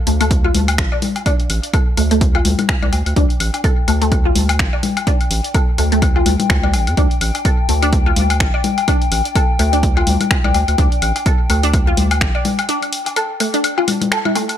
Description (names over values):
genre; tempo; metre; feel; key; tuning
minimal techno; 126 BPM; 4/4; swing 57% on 16ths; D minor; A4 = 440 Hz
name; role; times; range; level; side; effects
warbly tape-like pad; texture; 0.0-14.6 s; F5 to G5; -25 LUFS; left 6 dB; chorus, built-in reverb, sidechain pumping
resonant blip pluck; riff; 0.1-14.5 s; A3 to D5; -22 LUFS; equal; phaser, ensemble chorus, sidechain pumping, dub echo
round analog bass; bass; 0.1-12.3 s; A1 to F2; -18 LUFS; equal; sidechain pumping
punchy analog drum machine; drums; 0.1-14.6 s; finger snaps, hi-hat; -23 LUFS; equal; none
woodblock and congas; percussion; 0.2-14.6 s; none; -22 LUFS; left 5 dB; dub echo
electronic kick drum; drums; 0.3-12.3 s; none; -16 LUFS; equal; none
room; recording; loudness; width
digital ambience; none; -13 LUFS; side -10 dB against mid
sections
0.0-14.6 A section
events
drop 0.0-14.6; break 12.7-14.6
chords
0.0 Dm